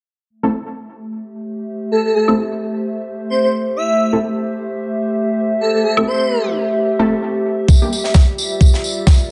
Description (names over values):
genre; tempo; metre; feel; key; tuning
bass house; 130 BPM; 4/4; swing 58% on 16ths; A minor; A4 = 440 Hz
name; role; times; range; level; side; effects
warbly tape-like pad; texture; 1.0-9.3 s; G3 to E5; -22 LUFS; equal; chorus, built-in reverb, sidechain pumping
orchestra-hit-like synth stab; stabs; 0.4-7.9 s; G3 to A4; -22 LUFS; equal; built-in reverb, sidechain pumping, tape echo
airy dreamy lead; melody; 1.9-6.4 s; A4 to E5; -20 LUFS; equal; chorus, vintage 12-bit sampler grit, tape echo
woodblock; drums; 2.3-2.4, 6.0 s; none; -24 LUFS; equal; overdrive, low-pass filter on perc, studio reverb
electronic kick drum; drums; 7.7-9.2 s; none; -12 LUFS; equal; overdrive, studio reverb
tambourine and snare drum; drums; 7.7-9.2 s; none; -25 LUFS; equal; high-pass filter on snare, studio reverb, high-pass filter on perc, high-pass filter on room
room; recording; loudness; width
light reverb, small room ambience; nothing above 10.7 kHz; -17 LUFS; mono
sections
0.3-9.3 A section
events
none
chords
0.3 Am; 7.7 Gm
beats
| 0.30 0.76 1.22 1.69 | 2.15 2.61 3.07 3.53 | 3.99 4.45 4.92 5.38 | 5.84 6.30 6.76 7.22 | 7.68 8.15 8.61 9.07